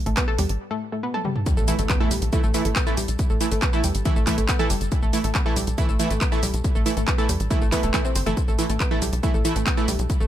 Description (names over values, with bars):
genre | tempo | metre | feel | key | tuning
driving peak-time techno | 139 BPM | 4/4 | straight | unclear | A4 = 440 Hz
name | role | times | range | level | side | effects
analog pluck | riff | 0.1-10.2 s | G3 to A4 | -28 LUFS | equal | chorus, overdrive, cassette tape, sidechain pumping, dub echo
tight sequencer bass | bass | 0.1-10.3 s | E1 to E2 | -25 LUFS | equal | sidechain pumping
techno drum kit | drums | 0.1-10.3 s | handclaps, hi-hat, shaker, toms | -28 LUFS | equal | sidechain pumping on hats, sidechain pumping on toms, sidechain pumping on perc
electronic kick drum | drums | 0.2-10.2 s | none | -23 LUFS | equal | none
impact | sound effects | 1.5-3.2 s | none | -32 LUFS | equal | none
supersaw stab | stabs | 1.7-9.9 s | E3 to E4 | -27 LUFS | right 3 dB | sidechain pumping, tape echo
room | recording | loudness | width
little or no reverb | none | -20 LUFS | side -12 dB against mid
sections
0.0-1.5 A section; 1.5-10.3 B section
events
break 0.6-1.5; drum fill 1.1-1.5; drop 1.5-10.3; impact 1.5-3.2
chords
0.0 A5